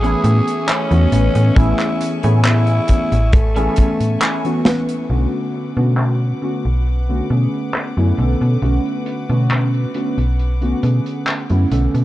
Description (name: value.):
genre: vaporwave.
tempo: 68 BPM.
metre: 4/4.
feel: straight.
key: unclear.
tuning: A4 = 440 Hz.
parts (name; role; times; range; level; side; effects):
growling tenor saxophone; melody; 0.0-4.7 s; A3 to G#4; -23 LUFS; equal; vintage 12-bit sampler grit, tape echo.
warbly lo-fi synth keys; accompaniment; 0.0-12.0 s; D3 to B4; -20 LUFS; equal; lush chorus, analog delay.
rich chamber string section; sustained chords; 0.0-12.0 s; A3 to D6; -32 LUFS; left 2 dB; none.
clean electric guitar; riff; 0.0-4.7 s; A3 to G#4; -28 LUFS; right 1 dB; ensemble chorus, analog delay.
slap-like FM bass; bass; 0.0-12.0 s; A1 to B2; -15 LUFS; equal; none.
modern studio drum kit; drums; 0.0-12.0 s; handclaps, hi-hat, snare drum; -20 LUFS; equal; low-pass filter on hats, low-pass filter on snare, low-pass filter on room.
kick drum; drums; 1.6-4.0 s; none; -13 LUFS; equal; none.
room: studio ambience.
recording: dark, warm production, cassette tape.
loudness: -14 LUFS.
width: side -15 dB against mid.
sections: 0.0-5.1 A section; 5.1-12.0 B section.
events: break 4.2-5.1; drum fill 4.7-5.1; filter sweep on drum 5.1-12.0.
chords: 0.0 Amaj7; 5.1 Bm7.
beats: 0.68 | 1.57 2.45 3.33 4.21 | 5.09 5.98 6.86 7.74 | 8.62 9.51 10.39 11.27.